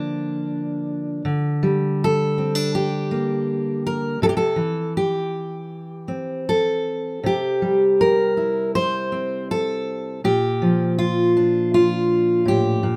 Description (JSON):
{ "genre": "folk, solo fingerstyle acoustic guitar", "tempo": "81 BPM", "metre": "4/4", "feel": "rubato", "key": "unclear", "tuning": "A4 = 441 Hz", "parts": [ { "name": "fingerpicked steel-string acoustic guitar", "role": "solo", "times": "0.0-13.0 s", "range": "A2 to C5", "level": "-21 LUFS", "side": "equal", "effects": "none" } ], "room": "moderate small room reverb, RT60 0.5 s", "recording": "none", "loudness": "-21 LUFS", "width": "mono", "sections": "0.0-13.0 A section", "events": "none", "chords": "0.0 Bb/D; 1.3 Gm/D; 4.2 C; 10.2 Bb" }